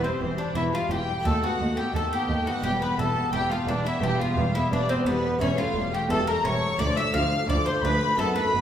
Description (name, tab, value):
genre	classical, baroque-style concerto movement with solo episodes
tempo	86 BPM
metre	4/4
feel	straight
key	unclear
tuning	A4 = 438 Hz
part	bowl-back mandolin	melody	0.0-8.6 s	B3 to F5	-30 LUFS	left 1 dB	none
part	warm studio violin section	melody	0.0-8.6 s	B4 to F6	-29 LUFS	left 2 dB	none
part	warm chamber violin section	second line	0.0-8.6 s	B3 to F5	-31 LUFS	left 2 dB	none
part	dark chamber viola section	accompaniment	0.0-8.6 s	E3 to B3	-31 LUFS	equal	none
part	harpsichord	accompaniment	0.0-8.6 s	D2 to F#4	-35 LUFS	equal	none
part	rich chamber double bass section	bass	0.2-8.6 s	E1 to D#2	-30 LUFS	right 2 dB	none
part	warm chamber cello section	bass	0.2-8.6 s	D2 to F#2	-30 LUFS	right 1 dB	none
room	wet recital hall reverb, RT60 1.6 s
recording	heard from further back in the room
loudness	-22 LUFS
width	side -9 dB against mid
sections	0.0-8.6 A section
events	none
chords	0.0 Em; 1.2 B7/D#; 2.6 Em; 5.4 A5/E; 6.8 Dm